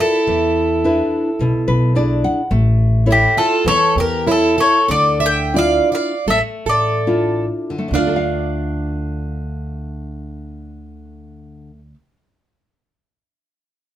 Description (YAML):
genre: fado-style ballad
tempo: 67-108 BPM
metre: 4/4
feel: rubato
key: D harmonic minor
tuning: A4 = 441 Hz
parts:
  - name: mandolin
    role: melody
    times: 0.0-12.0 s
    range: G4 to G5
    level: -17 LUFS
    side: left 2 dB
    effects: none
  - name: picked plugged-in twelve-string acoustic guitar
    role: second line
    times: 0.0-11.9 s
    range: D4 to E5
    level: -21 LUFS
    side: right 5 dB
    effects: none
  - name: nylon-string guitar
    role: accompaniment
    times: 0.0-12.2 s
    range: B2 to F#5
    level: -22 LUFS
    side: left 2 dB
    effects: none
  - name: upright bass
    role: bass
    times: 0.3-11.9 s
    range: A1 to E2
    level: -21 LUFS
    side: equal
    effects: none
room: moderate studio reverb, RT60 0.5 s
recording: band playing live in one room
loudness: -14 LUFS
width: side -12 dB against mid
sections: 0.0-7.9 A section; 7.9-11.4 B section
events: nylon-string guitar fill 1.4-2.5; slowing down 2.5-7.9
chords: 0.3 E7; 2.5 A; 4.9 Dmadd9; 7.9 Dm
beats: | 0.27 0.84 1.40 1.96 | 2.51 3.07 3.65 4.27 | 4.90 5.56 6.28 7.07 | 7.92 8.79 9.66 10.54